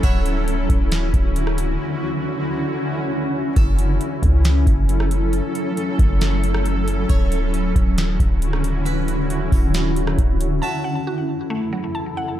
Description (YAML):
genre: hip hop, atmospheric cloud-rap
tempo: 136 BPM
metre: 4/4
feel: half-time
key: F# minor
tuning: A4 = 440 Hz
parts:
  - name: granular cloud pad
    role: sustained chords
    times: 0.0-12.4 s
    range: F#2 to A4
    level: -22 LUFS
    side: equal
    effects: built-in reverb, sidechain pumping
  - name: warm 808-style bass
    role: bass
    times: 0.0-10.6 s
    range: D1 to C#2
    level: -20 LUFS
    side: equal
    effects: none
  - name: booming analog drum machine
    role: drums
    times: 0.0-10.5 s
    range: hi-hat, kick drum, rim click, snare drum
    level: -20 LUFS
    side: equal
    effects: none
  - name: harpsichord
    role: texture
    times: 0.0-12.4 s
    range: E4 to A5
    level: -33 LUFS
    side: right 1 dB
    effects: none
  - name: mallet-like synth pluck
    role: arpeggios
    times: 10.6-12.4 s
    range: F#3 to A5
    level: -26 LUFS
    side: equal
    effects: chorus, ping-pong delay
room: light reverb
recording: none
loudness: -17 LUFS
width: side -12 dB against mid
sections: 0.0-10.6 A section; 10.6-12.4 B section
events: break 1.8-3.6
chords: 0.0 Dmaj9; 3.6 F#m7; 7.1 Dmaj9; 10.6 F#m7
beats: | 0.04 0.48 0.92 1.36 | 1.80 2.24 2.68 3.12 | 3.56 4.01 4.45 4.89 | 5.33 5.77 6.21 6.65 | 7.09 7.54 7.98 8.42 | 8.86 9.30 9.74 10.18 | 10.62 11.06 11.51 11.95 | 12.39